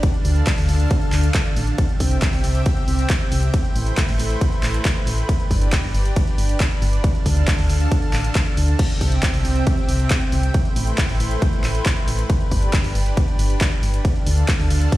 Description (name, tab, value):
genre	uplifting trance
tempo	137 BPM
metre	4/4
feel	straight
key	C major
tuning	A4 = 440 Hz
part	lush unison pad	sustained chords	0.0-15.0 s	C3 to A5	-26 LUFS	right 1 dB	chorus, sidechain pumping
part	electronic kick drum	drums	0.0-15.0 s	none	-20 LUFS	equal	overdrive
part	punchy analog drum machine	drums	0.0-15.0 s	crash cymbal, handclaps, hi-hat, ride cymbal	-27 LUFS	equal	none
part	solid FM bass	bass	0.2-14.9 s	G1 to D2	-19 LUFS	equal	sidechain pumping
room	little or no reverb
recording	played on a big sound system in a bare room, stone room reverb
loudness	-17 LUFS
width	side -16 dB against mid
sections	0.0-15.0 A section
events	none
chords	0.0 Dm; 1.8 C; 3.5 Am7; 5.3 G; 7.0 Dm; 8.8 C; 10.5 Am7; 12.3 G; 14.0 Dm